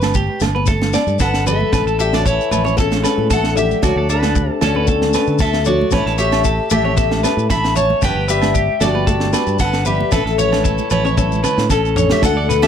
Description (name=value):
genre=highlife guitar band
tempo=114 BPM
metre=4/4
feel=straight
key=unclear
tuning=A4 = 440 Hz
part: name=electric guitar at the edge of break-up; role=arpeggios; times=0.0-12.7 s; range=F#4 to E5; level=-22 LUFS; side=right 3 dB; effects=lush chorus, analog delay
part: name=fingered electric bass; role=bass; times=0.0-12.7 s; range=G1 to D3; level=-20 LUFS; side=equal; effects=none
part: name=tight funk drum kit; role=drums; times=0.0-12.7 s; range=kick drum, snare drum, toms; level=-21 LUFS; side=right 1 dB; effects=none
part: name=agogo bells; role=percussion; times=0.0-12.7 s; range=none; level=-27 LUFS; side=right 17 dB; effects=none
part: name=congas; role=percussion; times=0.0-12.2 s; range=none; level=-27 LUFS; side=right 8 dB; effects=none
part: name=shekere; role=percussion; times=0.0-12.6 s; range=none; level=-26 LUFS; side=left 8 dB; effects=none
part: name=flamenco guitar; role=accompaniment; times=0.4-12.4 s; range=A3 to D4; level=-25 LUFS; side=left 4 dB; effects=none
part: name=picked steel-string acoustic guitar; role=melody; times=1.2-12.7 s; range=C#4 to B5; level=-19 LUFS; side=left 4 dB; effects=none
part: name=trombone with cup mute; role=second line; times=1.2-11.7 s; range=C#3 to E4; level=-26 LUFS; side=left 10 dB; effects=none
room=light reverb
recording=none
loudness=-14 LUFS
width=side -8 dB against mid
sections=0.0-12.2 A section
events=drum fill 11.2-12.2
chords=0.0 G; 1.7 A; 3.8 D; 5.9 A; 8.0 G; 10.1 A